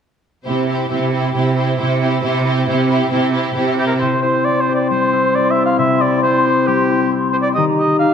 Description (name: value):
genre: cinematic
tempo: 135 BPM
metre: 4/4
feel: straight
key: C major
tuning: A4 = 438 Hz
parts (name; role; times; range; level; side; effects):
- warm symphonic violin section; melody; 0.4-4.0 s; C5; -26 LUFS; left 3 dB; none
- warm symphonic violin section; second line; 0.5-4.0 s; G4; -24 LUFS; left 3 dB; none
- rich symphonic viola section; accompaniment; 0.5-4.0 s; E4; -23 LUFS; right 3 dB; none
- rich symphonic cello section; bass; 0.5-4.0 s; C3; -18 LUFS; right 4 dB; none
- warm oboe; second line; 3.8-8.1 s; G4 to F5; -17 LUFS; right 2 dB; none
- mellow hollow flute section; second line; 4.0-8.1 s; Bb5 to C6; -22 LUFS; left 4 dB; none
- warm clarinet; second line; 4.0-8.1 s; E4 to G4; -23 LUFS; right 1 dB; none
- mellow French horn section; sustained chords; 4.0-8.1 s; C4 to Eb4; -18 LUFS; left 5 dB; none
- concert harp; arpeggios; 4.0-8.1 s; C3 to G4; -23 LUFS; left 6 dB; none
room: wet scoring stage reverb, RT60 1.6 s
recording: none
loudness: -14 LUFS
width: side -7 dB against mid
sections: 0.5-4.0 A section; 4.0-8.1 B section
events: none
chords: 0.5 C; 7.6 Eb